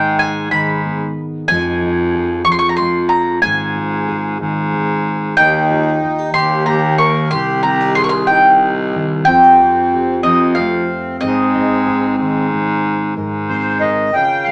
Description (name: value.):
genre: acoustic folk duo or small band.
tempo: 62 BPM (dotted quarters).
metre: 6/8.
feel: straight.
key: unclear.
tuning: A4 = 440 Hz.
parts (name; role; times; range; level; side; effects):
mandolin; melody; 0.0-12.5 s; Eb5 to Db6; -17 LUFS; equal; none.
fingerpicked steel-string acoustic guitar; accompaniment; 0.0-14.5 s; Eb2 to Bb4; -26 LUFS; equal; none.
mellow baritone saxophone; bass; 0.0-14.5 s; C2 to Db3; -21 LUFS; equal; none.
accordion; second line; 5.4-14.5 s; C4 to G5; -20 LUFS; equal; none.
room: wet studio reverb, RT60 0.6 s.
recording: nothing above 10.3 kHz.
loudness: -15 LUFS.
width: mono.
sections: 0.0-13.2 A section; 13.2-14.5 B section.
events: accordion solo 13.2-14.5.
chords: 0.0 Abm; 1.5 Fm7; 3.4 Ab6; 5.4 Ebadd9; 7.3 Cm; 9.3 Fadd9; 11.2 Ab; 13.2 Abadd9.